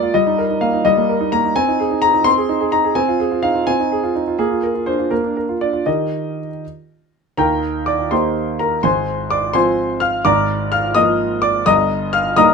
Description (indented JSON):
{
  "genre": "classical-period piano sonatina",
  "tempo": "84 BPM (dotted quarters)",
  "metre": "6/8",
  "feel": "rubato",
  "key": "Eb major",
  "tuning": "A4 = 440 Hz",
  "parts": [
    { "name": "warm concert grand piano", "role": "solo", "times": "0.0-12.5 s", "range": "G1 to F6", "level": "-15 LUFS", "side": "equal", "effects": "none" }
  ],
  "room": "light reverb",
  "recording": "close, detailed microphones",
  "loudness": "-15 LUFS",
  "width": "side -5 dB against mid",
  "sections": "0.0-7.4 A section; 7.4-12.5 B section",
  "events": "none",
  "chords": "0.1 Eb/G; 1.6 Ab/C; 3.0 Fm7/C; 4.4 Bb7; 5.9 Eb; 8.8 Fm/Ab; 10.2 Bb7/Ab; 11.7 Eb/G",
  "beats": "| 0.14 0.84 | 1.55 2.25 | 2.96 3.68 | 4.39 5.12 | 5.86 6.63 | 7.38 8.11 | 8.84 9.54 | 10.25 10.96 | 11.66 12.37"
}